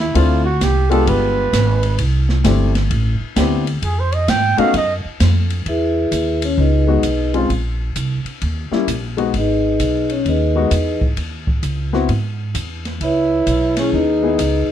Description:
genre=jazz, small-group swing and bop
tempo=131 BPM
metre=4/4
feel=swing 66% on 8ths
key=E major from 5.7 s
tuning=A4 = 440 Hz
part: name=breathy trumpet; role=second line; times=0.0-4.9, 13.0-14.6 s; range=C#4 to G5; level=-20 LUFS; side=right 5 dB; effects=none
part: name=upright bass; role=bass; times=0.0-14.7 s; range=G1 to Ab2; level=-18 LUFS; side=equal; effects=none
part: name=open jazz drum kit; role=drums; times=0.0-14.5 s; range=hi-hat, kick drum, ride cymbal, snare drum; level=-24 LUFS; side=equal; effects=none
part: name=warm baby grand piano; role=accompaniment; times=0.1-14.4 s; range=G3 to G#4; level=-19 LUFS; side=left 6 dB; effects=none
part: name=vibraphone with soft mallets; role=melody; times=5.7-14.7 s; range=C#4 to E5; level=-17 LUFS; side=left 1 dB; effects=none
room=light reverb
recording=dark, warm production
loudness=-15 LUFS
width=side -10 dB against mid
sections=0.0-5.7 A section; 5.7-14.7 B section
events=trumpet solo 0.0-5.7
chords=0.1 Dm7; 1.1 G7b9; 2.0 C69; 2.9 Am11; 3.8 Fm7; 4.7 Ebmadd9 (rootless); 5.7 Emaj7; 7.5 A#sus2; 8.4 D#7b9; 9.3 G#m; 11.2 C#m11; 12.1 E; 13.0 C#m9

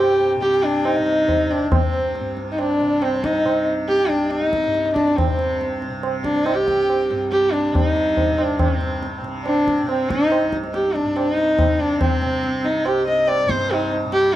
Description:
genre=indian classical, Hindustani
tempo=140 BPM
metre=4/4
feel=straight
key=unclear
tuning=A4 = 440 Hz
part: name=warm sarangi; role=melody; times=0.0-14.4 s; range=C4 to Eb5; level=-19 LUFS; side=equal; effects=none
part: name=breathy alto ocarina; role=second line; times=0.0-7.3 s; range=C5 to G5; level=-28 LUFS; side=left 3 dB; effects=none
part: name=tanpura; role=drone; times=0.0-14.4 s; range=C2 to C3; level=-28 LUFS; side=right 1 dB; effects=none
part: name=tabla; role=percussion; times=0.0-14.4 s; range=none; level=-23 LUFS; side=right 1 dB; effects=none
room=moderate small room ambience, RT60 0.5 s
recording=dark, warm production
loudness=-17 LUFS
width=side -13 dB against mid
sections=0.0-8.6 A section; 8.6-14.4 B section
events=none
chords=none

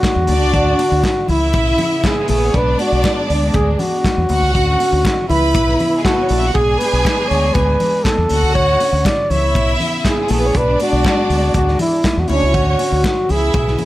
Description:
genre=disco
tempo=120 BPM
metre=4/4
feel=straight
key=B dorian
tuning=A4 = 440 Hz
part: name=breathy flugelhorn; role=melody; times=0.0-13.8 s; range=D4 to D5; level=-17 LUFS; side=equal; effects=none
part: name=dark studio string section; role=sustained chords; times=0.0-13.8 s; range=C#3 to F#4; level=-25 LUFS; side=equal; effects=none
part: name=vintage drum kit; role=drums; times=0.0-13.8 s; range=handclaps, hi-hat, kick drum, snare drum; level=-20 LUFS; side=equal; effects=none
part: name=congas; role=percussion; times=0.0-13.8 s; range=none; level=-27 LUFS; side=left 4 dB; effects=none
part: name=deep dub fingered electric bass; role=bass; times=0.2-13.7 s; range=A#1 to E2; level=-18 LUFS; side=equal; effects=none
part: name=warm studio violin section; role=second line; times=0.3-13.8 s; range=G#3 to B5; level=-21 LUFS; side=right 1 dB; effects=tape echo
room=light reverb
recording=none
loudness=-13 LUFS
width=side -16 dB against mid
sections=0.0-13.8 A section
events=none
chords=0.3 D; 1.3 C#m7; 2.5 Bm6; 4.3 Dmaj7; 5.3 C#m7; 6.5 Bm6; 8.3 Dmaj7; 9.3 C#m7; 10.5 Bm6; 12.3 Dmaj7; 13.3 C#m7

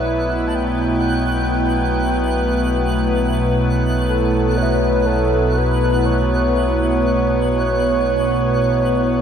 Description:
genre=ambient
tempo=free time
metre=none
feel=none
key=unclear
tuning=A4 = 440 Hz
part: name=breathy flute-like synth lead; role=melody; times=0.0-9.2 s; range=A4 to A5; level=-22 LUFS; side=equal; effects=chorus, shimmer reverb, diffuse ambient delay
part: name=evolving wavetable pad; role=sustained chords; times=0.0-9.2 s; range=B2 to B4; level=-18 LUFS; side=right 1 dB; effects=chorus, built-in reverb
part: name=deep rumbling drone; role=bass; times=0.0-9.2 s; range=B1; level=-23 LUFS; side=left 1 dB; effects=built-in reverb, tube saturation
part: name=hand-pumped harmonium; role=drone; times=0.0-9.2 s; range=F#3 to B3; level=-28 LUFS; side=left 1 dB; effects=none
part: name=twinkling granular texture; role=texture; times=0.0-9.2 s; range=F#6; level=-30 LUFS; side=right 4 dB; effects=built-in reverb, shimmer reverb
part: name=tine electric piano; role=arpeggios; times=4.6-9.2 s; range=C#5 to E5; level=-29 LUFS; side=right 2 dB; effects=none
room=wet cathedral reverb, RT60 6.1 s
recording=dark, warm production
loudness=-15 LUFS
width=side -8 dB against mid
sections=0.0-9.2 A section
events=none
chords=0.0 A7/B

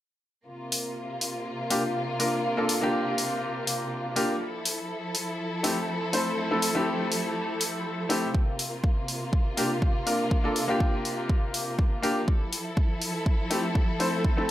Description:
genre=nu-disco, nu disco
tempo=122 BPM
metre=4/4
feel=swing 54% on 16ths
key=C mixolydian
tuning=A4 = 440 Hz
part: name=warm studio string section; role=sustained chords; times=0.5-14.5 s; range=C3 to A4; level=-31 LUFS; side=equal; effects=sidechain pumping
part: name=electronic hi-hat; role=drums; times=0.7-14.1 s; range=none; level=-30 LUFS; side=left 2 dB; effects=overdrive
part: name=clear grand piano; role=accompaniment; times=1.7-14.5 s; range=A3 to C5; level=-28 LUFS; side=equal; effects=analog delay
part: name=electronic kick drum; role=drums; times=8.3-14.4 s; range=none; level=-24 LUFS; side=equal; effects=overdrive
room=light reverb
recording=none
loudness=-25 LUFS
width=side -13 dB against mid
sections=0.5-14.5 A section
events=none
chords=0.5 C7sus4; 4.4 Fmaj7; 8.3 C7sus4; 12.3 Fmaj7

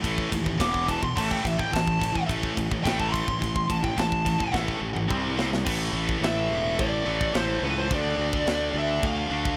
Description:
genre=heavy metal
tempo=107 BPM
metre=4/4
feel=straight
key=A minor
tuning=A4 = 442 Hz
part: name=high-gain distorted guitar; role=riff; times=0.0-9.6 s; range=E2 to D4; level=-34 LUFS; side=equal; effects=distortion
part: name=scooped high-gain guitar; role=riff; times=0.0-9.6 s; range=E2 to D4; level=-32 LUFS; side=equal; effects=distortion
part: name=fuzz fingered electric bass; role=bass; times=0.0-9.6 s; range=E1 to D#2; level=-33 LUFS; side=equal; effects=overdrive
part: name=tight metal drum kit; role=drums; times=0.0-9.6 s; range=china cymbal, crash cymbal, kick drum, ride cymbal, snare drum, toms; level=-33 LUFS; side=equal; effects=none
part: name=high-gain lead guitar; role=melody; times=0.6-9.6 s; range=B4 to D6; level=-31 LUFS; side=equal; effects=distortion, tape echo
room=light reverb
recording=none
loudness=-26 LUFS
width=mono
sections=0.0-5.7 A section; 5.7-9.6 B section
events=lead electric guitar solo 0.0-5.7; drum fill 4.5-5.7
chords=0.0 A5; 0.6 E5; 1.2 A5; 5.1 C5; 5.7 A5; 7.9 Dm

